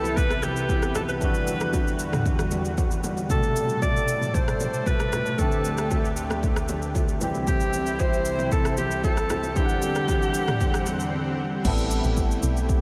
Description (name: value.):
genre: amapiano.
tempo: 115 BPM.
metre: 4/4.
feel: straight.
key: E minor.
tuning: A4 = 440 Hz.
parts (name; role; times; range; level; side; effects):
warm alto saxophone; melody; 0.0-11.4 s; G4 to D5; -31 LUFS; equal; diffuse ambient delay.
barky tine electric piano; accompaniment; 0.0-12.8 s; B2 to F#5; -33 LUFS; equal; ensemble chorus.
lush unison pad; sustained chords; 0.0-12.8 s; C2 to F#5; -32 LUFS; equal; chorus.
bongos and congas; percussion; 0.0-11.0 s; none; -39 LUFS; equal; none.
deep house drum kit; drums; 0.1-12.8 s; crash cymbal, kick drum, rim click, shaker, toms; -29 LUFS; equal; none.
swell; sound effects; 10.4-11.6 s; none; -40 LUFS; equal; none.
deep log drum bass; bass; 11.6-12.8 s; A1 to B1; -27 LUFS; equal; none.
room: wet huge ambient reverb, RT60 7.7 s.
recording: dreamy mix soaked in reverb.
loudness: -24 LUFS.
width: mono.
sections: 0.0-11.6 A section; 11.6-12.8 B section.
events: swell 10.4-11.6; break 11.1-11.6; drop 11.6-12.8.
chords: 0.0 Cmaj7; 1.2 Em9; 3.3 Am9; 5.4 D7sus4; 7.2 C; 9.6 Em9; 11.6 Am9.